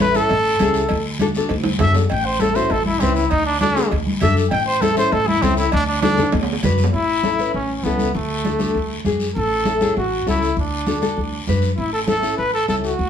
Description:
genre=latin, cumbia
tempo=199 BPM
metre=4/4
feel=straight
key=A major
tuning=A4 = 440 Hz
part: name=breathy trumpet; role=melody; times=0.0-13.1 s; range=A3 to G5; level=-20 LUFS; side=equal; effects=none
part: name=nylon-string guitar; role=accompaniment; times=0.0-12.9 s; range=C#4 to B4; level=-23 LUFS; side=left 4 dB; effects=none
part: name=upright bass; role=bass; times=0.0-13.1 s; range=A1 to F#2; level=-23 LUFS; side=left 1 dB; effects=none
part: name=congas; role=percussion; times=0.0-13.1 s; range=none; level=-25 LUFS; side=right 1 dB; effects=none
part: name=guiro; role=percussion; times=0.0-13.1 s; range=none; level=-32 LUFS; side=left 4 dB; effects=none
part: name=cowbell and timbales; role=percussion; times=0.3-6.9 s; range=none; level=-27 LUFS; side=right 5 dB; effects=none
room=moderate studio reverb, RT60 0.7 s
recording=studio reverb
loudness=-16 LUFS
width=side -8 dB against mid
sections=0.0-6.9 A section; 6.9-13.1 B section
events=trumpet solo 0.0-6.9; drum fill 1.5-2.1, 6.0-6.9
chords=0.0 A; 0.9 D; 2.1 A; 3.3 D; 4.5 A; 5.7 D; 6.9 A; 8.1 D; 9.4 A; 10.6 D; 11.8 A

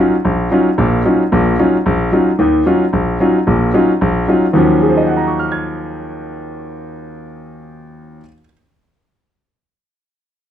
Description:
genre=jazz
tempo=223 BPM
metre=4/4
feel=swing 60% on 8ths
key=Eb dorian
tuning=A4 = 441 Hz
part: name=warm grand piano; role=solo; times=0.0-8.5 s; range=Bb1 to Ab6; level=-13 LUFS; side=equal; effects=none
room=moderate large studio reverb, RT60 0.9 s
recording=none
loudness=-12 LUFS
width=side -10 dB against mid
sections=0.0-2.4 A section; 2.4-4.5 B section; 4.5-6.7 C section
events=none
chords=0.0 Ebm9

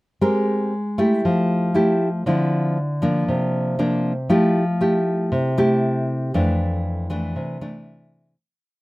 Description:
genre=bossa nova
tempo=118 BPM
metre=4/4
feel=straight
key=F major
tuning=A4 = 440 Hz
part: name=nylon-string guitar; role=solo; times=0.2-8.4 s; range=F2 to Bb4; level=-18 LUFS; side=equal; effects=none
room=little or no reverb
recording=close, detailed microphones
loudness=-18 LUFS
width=side -20 dB against mid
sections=0.2-8.4 A section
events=fade-out 6.3-8.4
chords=0.2 Abmaj9; 1.2 Fmaj9; 2.3 Dm9; 3.3 C9sus4; 4.3 Fmaj9; 6.3 F6

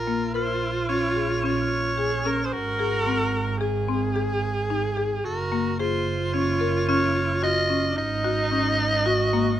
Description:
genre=contemporary instrumental, chamber music in an uneven meter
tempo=110 BPM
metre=5/4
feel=straight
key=unclear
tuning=A4 = 440 Hz
part: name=raspy soprano saxophone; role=melody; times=0.0-9.6 s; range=Gb4 to Eb5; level=-27 LUFS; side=equal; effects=none
part: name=warm viola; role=second line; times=0.0-9.6 s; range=D4 to C5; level=-28 LUFS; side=right 2 dB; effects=none
part: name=dark double bass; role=bass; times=0.0-9.6 s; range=Gb1 to Bb1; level=-28 LUFS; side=right 4 dB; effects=none
part: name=buzzing marimba with medium mallets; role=arpeggios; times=0.1-9.5 s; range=Bb3 to Bb4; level=-28 LUFS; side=left 5 dB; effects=none
part: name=glockenspiel with rubber mallets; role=texture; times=0.4-2.2, 6.9-9.1 s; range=Db6 to F6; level=-35 LUFS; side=left 3 dB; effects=none
room=moderate recital hall reverb, RT60 1.3 s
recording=close, detailed microphones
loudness=-22 LUFS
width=side -11 dB against mid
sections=0.0-9.6 A section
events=none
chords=0.0 Bbm7; 2.5 Ab7; 5.3 Gbmaj7(no3); 8.0 Ab7sus4

